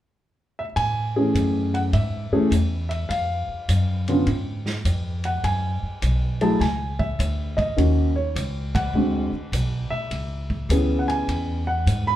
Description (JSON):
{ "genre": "jazz piano trio", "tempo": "103 BPM", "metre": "4/4", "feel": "swing 67% on 8ths", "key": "A major", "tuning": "A4 = 441 Hz", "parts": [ { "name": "dark grand piano", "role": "melody", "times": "0.6-12.2 s", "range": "D3 to B5", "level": "-23 LUFS", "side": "equal", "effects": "none" }, { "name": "upright bass", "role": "bass", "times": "0.8-12.2 s", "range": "B1 to A2", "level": "-24 LUFS", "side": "equal", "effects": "none" }, { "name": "vintage drum kit", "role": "drums", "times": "0.8-12.0 s", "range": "hi-hat, kick drum, ride cymbal, snare drum", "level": "-32 LUFS", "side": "right 1 dB", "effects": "none" } ], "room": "wet club reverb, RT60 0.8 s", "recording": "heard from further back in the room", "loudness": "-21 LUFS", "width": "side -13 dB against mid", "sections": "0.8-12.2 A section", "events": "band accent 8.6", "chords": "0.0 N.C.; 0.8 Amaj7; 3.1 C# (rootless); 5.4 F#7sus2; 7.8 D#m7; 8.9 D7#11; 10.1 C#m7" }